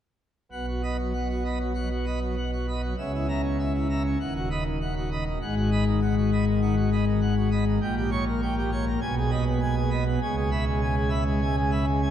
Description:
classical, organ toccata; 99 BPM; 4/4; straight; B major; A4 = 439 Hz
pipe organ, plenum; solo; 0.5-12.1 s; D#1 to Db6; -23 LUFS; equal
wet cathedral reverb, RT60 6.4 s; dark, warm production; -23 LUFS; side -10 dB against mid
0.5-12.1 A section
0.5 B; 3.0 A#dim/C#; 4.2 B/D#; 5.4 G#m7; 7.8 Gdim/Bb; 9.0 G#m/B; 10.2 C#m7
| 0.53 1.15 1.76 2.37 | 2.98 3.58 4.19 4.80 | 5.41 6.01 6.61 7.21 | 7.81 8.41 9.02 9.62 | 10.22 10.82 11.43 12.04

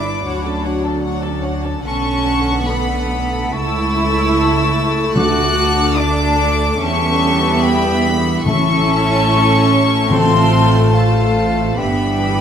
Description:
cinematic, emotional film score for orchestra; 73 BPM; 4/4; rubato; D major; A4 = 440 Hz
clear studio violin section; melody; 0.0-12.4 s; A5 to F#6; -20 LUFS; left 4 dB
hollow concert flute; second line; 0.0-12.4 s; F5 to D6; -22 LUFS; left 2 dB
warm symphonic violin section; second line; 0.0-12.4 s; G4 to A5; -25 LUFS; left 4 dB
dark symphonic viola section; accompaniment; 0.0-12.4 s; D3 to G4; -23 LUFS; right 2 dB
mellow French horn section; sustained chords; 0.0-12.4 s; D3 to F4; -23 LUFS; left 3 dB
rich symphonic cello section; bass; 0.0-12.4 s; A3 to F#4; -21 LUFS; right 4 dB
warm symphonic double bass section; bass; 0.0-12.4 s; G1 to E2; -19 LUFS; right 2 dB
timpani; percussion; 5.2-11.3 s; A2 to D3; -21 LUFS; left 1 dB
moderate scoring stage reverb, RT60 1.6 s; -13 LUFS; side -8 dB against mid
0.0-12.4 A section
0.2 Dmaj7; 1.9 Bm7; 3.5 A/C#; 5.2 D; 6.8 Em7; 8.5 A; 10.1 F/A; 11.8 G6
0.24 1.06 | 1.87 2.68 3.53 4.35 | 5.17 5.99 6.81 7.63 | 8.46 9.28 10.11 10.94 | 11.79

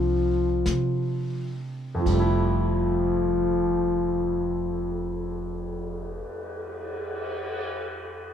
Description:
jazz ballad; 41 BPM; 4/4; swing 67% on 8ths; F major; A4 = 440 Hz
breathy trombone; melody; 0.0-6.3 s; F3; -25 LUFS; left 1 dB
warm grand piano; accompaniment; 0.0-8.3 s; F2 to F4; -31 LUFS; right 1 dB
upright bass; bass; 0.0-6.2 s; F1 to C3; -29 LUFS; right 1 dB
vintage brush drum kit; drums; 0.7-7.6 s; brushed snare drum, crash cymbal, cymbal swell, hi-hat, kick drum, snare drum; -34 LUFS; left 1 dB
light reverb; band playing live in one room; -24 LUFS; side -9 dB against mid
0.0-2.1 A section; 2.1-7.9 B section
slowing down 0.0-2.1
0.0 Fmaj9
0.66 | 2.06 3.52 4.98 6.44

